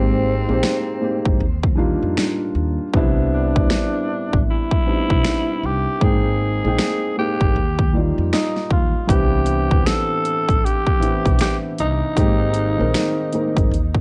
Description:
lo-fi hip hop; 78 BPM; 4/4; swing 62% on 16ths; A4 = 440 Hz
growling tenor saxophone; melody; 0.0-14.0 s; C4 to A4; -26 LUFS; equal; low-pass filter, plate reverb
felt-muted upright piano; accompaniment; 0.0-13.7 s; Eb3 to G5; -25 LUFS; equal; low-pass filter
upright bass; bass; 0.0-14.0 s; Ab1 to F2; -24 LUFS; equal
dubstep drum kit; drums; 0.6-14.0 s; finger snaps, hi-hat, kick drum, snare drum; -22 LUFS; equal; vintage 12-bit sampler grit
light reverb; -19 LUFS; mono
0.0-14.0 A section
break 0.0-9.1
0.0 Abmaj9; 1.4 Ebmaj9; 2.9 Cmaj9; 6.0 Abmaj9; 7.5 Ebmaj9; 9.1 Cmaj9; 12.2 Abmaj9
0.63 1.40 2.17 | 2.94 3.70 4.47 5.24 | 6.01 6.78 7.55 8.32 | 9.09 9.86 10.63 11.40 | 12.17 12.94 13.70

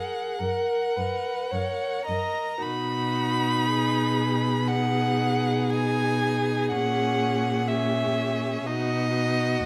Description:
classical, slow romantic movement for string quartet; 53-63 BPM; 4/4; rubato; B major; A4 = 440 Hz
warm violin; melody; 0.0-9.7 s; D#5 to B5; -30 LUFS; equal
warm violin; second line; 0.0-9.7 s; F#4 to D#5; -32 LUFS; equal
rich viola; accompaniment; 0.0-9.6 s; C#4 to A#4; -34 LUFS; equal
rich cello; bass; 0.4-9.6 s; F#2 to B2; -30 LUFS; equal
moderate recital hall reverb, RT60 1.4 s; close, detailed microphones; -26 LUFS; mono
0.0-2.6 A section; 2.6-9.7 B section
0.0 F#; 2.6 B; 6.7 F#7/A#; 8.7 B
0.41 1.52 | 2.63 3.67 4.70 5.71 | 6.72 7.69 8.66 9.65

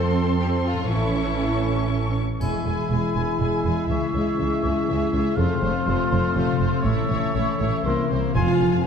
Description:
cinematic, heroic adventure film score; 121 BPM; 3/4; straight; A4 = 444 Hz
warm symphonic violin section; melody; 0.0-8.8 s; C5 to C#6; -32 LUFS; left 4 dB
rich symphonic violin section; second line; 0.0-8.8 s; E4 to F5; -34 LUFS; left 4 dB
warm symphonic viola section; accompaniment; 0.0-8.8 s; E3 to A4; -29 LUFS; right 3 dB
concert harp; arpeggios; 0.0-8.9 s; F2 to B4; -28 LUFS; left 9 dB
warm symphonic cello section; bass; 0.0-8.8 s; Db2 to C#4; -29 LUFS; right 3 dB
warm symphonic double bass section; bass; 0.0-8.7 s; E1 to F2; -26 LUFS; right 3 dB
bright clarinet; second line; 2.4-8.5 s; G#4 to Ab5; -34 LUFS; left 3 dB
mellow hollow small flute group; second line; 2.4-8.9 s; Ab5 to Db6; -32 LUFS; left 4 dB
warm oboe; second line; 2.4-8.5 s; E5 to C6; -32 LUFS; right 3 dB
mellow French horn section; sustained chords; 2.4-8.8 s; F3 to E4; -28 LUFS; left 2 dB
triangle; percussion; 2.4-3.4 s; -50 LUFS; left 1 dB
timpani; percussion; 8.4-8.9 s; F2; -26 LUFS; equal
moderate scoring stage reverb, RT60 2.0 s; dark, warm production; -20 LUFS; side -7 dB against mid
0.0-2.4 A section; 2.4-8.4 B section
0.0 F; 0.9 A; 2.4 E; 3.9 Dbm; 5.4 F; 6.9 A; 7.9 C7; 8.4 Fm
0.40 | 0.90 1.40 1.91 | 2.41 2.91 3.40 | 3.90 4.39 4.89 | 5.38 5.87 6.37 | 6.86 7.35 7.86 | 8.36 8.86

